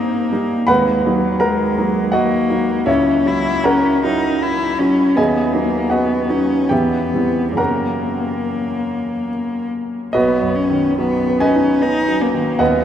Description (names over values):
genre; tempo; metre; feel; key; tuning
classical, romantic duo for cello and grand piano; 67-83 BPM; 3/4; rubato; B major; A4 = 443 Hz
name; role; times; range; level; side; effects
rich cello; melody; 0.0-12.8 s; F#3 to E4; -18 LUFS; left 2 dB; none
clear grand piano; accompaniment; 0.0-12.8 s; D#1 to Eb6; -18 LUFS; right 2 dB; none
room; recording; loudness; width
wet cathedral reverb, RT60 6.4 s; in a vast, echoing space; -15 LUFS; side -9 dB against mid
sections
0.0-10.1 A section; 10.1-12.8 B section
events
none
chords
0.0 Eb/G; 0.7 D#m; 2.9 F#7/C#; 5.2 B/D#; 6.7 C/E; 7.6 F#; 10.1 B